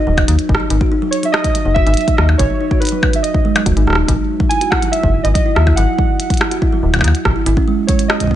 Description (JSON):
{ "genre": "IDM", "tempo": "142 BPM", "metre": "4/4", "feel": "straight", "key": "G# minor", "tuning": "A4 = 439 Hz", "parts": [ { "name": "warbly lo-fi synth keys", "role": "melody", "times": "0.0-8.4 s", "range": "B4 to G#5", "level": "-21 LUFS", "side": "right 2 dB", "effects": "chorus, tape echo" }, { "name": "kalimba", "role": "arpeggios", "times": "0.0-8.4 s", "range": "F#3 to F#4", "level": "-19 LUFS", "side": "right 2 dB", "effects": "vintage 12-bit sampler grit, digital delay" }, { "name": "metallic FM bass", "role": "bass", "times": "0.1-7.5 s", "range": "D#1 to D#2", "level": "-14 LUFS", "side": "equal", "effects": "none" }, { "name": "electronic kick drum", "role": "drums", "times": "0.2-8.3 s", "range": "none", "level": "-17 LUFS", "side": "equal", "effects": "studio ambience" }, { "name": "glitchy drum kit", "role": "drums", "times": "0.2-8.3 s", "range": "hi-hat, percussion blips, rim click", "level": "-19 LUFS", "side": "equal", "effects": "studio ambience" } ], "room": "digital ambience", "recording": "nothing above 10.9 kHz", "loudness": "-12 LUFS", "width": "side -12 dB against mid", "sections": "0.0-8.4 A section", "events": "none", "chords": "0.0 G#7(no3); 4.1 D#m; 7.5 Amaj7 (rootless)" }